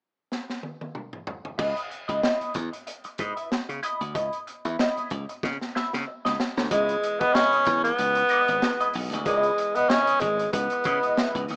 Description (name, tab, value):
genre	funk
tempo	94 BPM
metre	4/4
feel	swing 56% on 16ths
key	C# minor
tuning	A4 = 440 Hz
part	crunchy breakbeat drum kit	drums	0.3-11.6 s	crash cymbal, hi-hat, kick drum, snare drum, toms	-32 LUFS	equal	none
part	clean electric guitar	accompaniment	1.6-11.5 s	E4 to E5	-31 LUFS	equal	wah
part	glassy slap bass	bass	1.6-11.6 s	G#1 to C#3	-33 LUFS	equal	none
part	breathy tenor saxophone	melody	6.7-11.4 s	G#3 to C#4	-25 LUFS	equal	slapback echo
part	percussive tonewheel organ	sustained chords	6.7-11.6 s	E3 to D#5	-43 LUFS	equal	none
room	light reverb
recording	rough home demo mix, small speaker sound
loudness	-25 LUFS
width	mono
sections	0.0-1.6 A section; 1.6-6.7 B section; 6.7-11.6 C section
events	drum fill 0.3-1.6, 5.4-6.7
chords	0.0 N.C.; 1.6 C#m9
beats	0.31 0.95 | 1.59 2.23 2.87 3.52 | 4.16 4.79 5.43 6.07 | 6.71 7.35 7.99 8.63 | 9.26 9.90 10.54 11.18